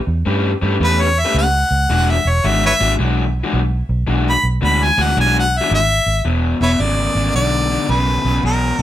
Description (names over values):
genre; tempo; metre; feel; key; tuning
blues; 110 BPM; 4/4; swing 65% on 8ths; E mixolydian; A4 = 441 Hz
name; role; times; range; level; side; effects
vintage muted fingered electric bass; bass; 0.1-8.8 s; E1 to G2; -18 LUFS; right 1 dB; none
raw garage guitar; riff; 0.3-8.8 s; E2 to B4; -20 LUFS; left 3 dB; overdrive
warm harmonica; melody; 0.8-8.8 s; A#4 to B5; -17 LUFS; equal; none
room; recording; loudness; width
light reverb; none; -14 LUFS; side -12 dB against mid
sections
0.0-6.3 A section; 6.3-8.8 B section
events
harmonica solo 0.0-6.3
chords
0.0 A9; 1.9 E9; 6.3 E7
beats
0.27 0.81 1.36 | 1.90 2.44 2.99 3.53 | 4.08 4.62 5.17 5.71 | 6.25 6.80 7.34 7.89 | 8.44